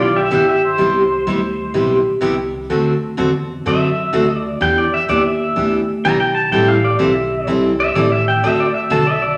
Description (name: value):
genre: country, western swing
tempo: 126 BPM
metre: 4/4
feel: swing 67% on 8ths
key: unclear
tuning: A4 = 440 Hz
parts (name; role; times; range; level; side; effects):
- pedal steel guitar; second line; 0.0-9.4 s; F4 to Bb5; -20 LUFS; equal; none
- picked steel-string acoustic guitar; accompaniment; 0.0-9.0 s; C3 to A4; -19 LUFS; equal; none
- upright bass; bass; 0.0-9.4 s; G1 to F#2; -26 LUFS; equal; none
room: wet large studio reverb, RT60 1.4 s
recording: none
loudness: -16 LUFS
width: mono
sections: 0.0-9.4 A section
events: pedal steel guitar solo 0.0-9.4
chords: 0.0 Em7; 0.8 Cmaj9; 2.7 D7; 4.6 Em7; 6.5 Am7; 8.4 D7